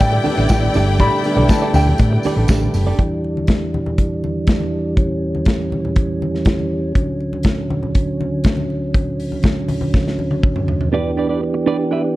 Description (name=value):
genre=disco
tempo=121 BPM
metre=4/4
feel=straight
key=E dorian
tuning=A4 = 438 Hz
part: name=clear studio string section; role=second line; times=0.0-2.9 s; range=E4 to G5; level=-23 LUFS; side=left 2 dB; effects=none
part: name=clean electric guitar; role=accompaniment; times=0.0-3.0, 10.9-12.1 s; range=D4 to E5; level=-22 LUFS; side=right 5 dB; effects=none
part: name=warm grand piano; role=accompaniment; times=0.0-3.0 s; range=G3 to B5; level=-22 LUFS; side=left 1 dB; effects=tube saturation
part: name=tonewheel organ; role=sustained chords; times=0.0-12.2 s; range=D2 to G4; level=-21 LUFS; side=right 1 dB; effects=overdrive, slow rotary speaker
part: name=hollow-body short-scale fingered electric bass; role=bass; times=0.0-2.9 s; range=F#1 to A2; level=-17 LUFS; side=equal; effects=none
part: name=modern studio drum kit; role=drums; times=0.0-10.9 s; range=hi-hat, kick drum, snare drum, toms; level=-18 LUFS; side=equal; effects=none
part: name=congas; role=percussion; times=0.0-10.8 s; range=none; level=-27 LUFS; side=left 2 dB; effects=none
part: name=tambourine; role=percussion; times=0.0-2.9 s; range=none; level=-37 LUFS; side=right 5 dB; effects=none
room=light reverb, studio reverb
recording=dark, warm production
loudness=-15 LUFS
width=side -17 dB against mid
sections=0.0-3.0 A section; 3.0-10.9 B section; 10.9-12.2 C section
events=grand piano solo 0.0-3.0; drum fill 9.9-10.9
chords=0.0 A7sus4; 3.0 Em7; 7.0 Dmaj7; 10.9 Em7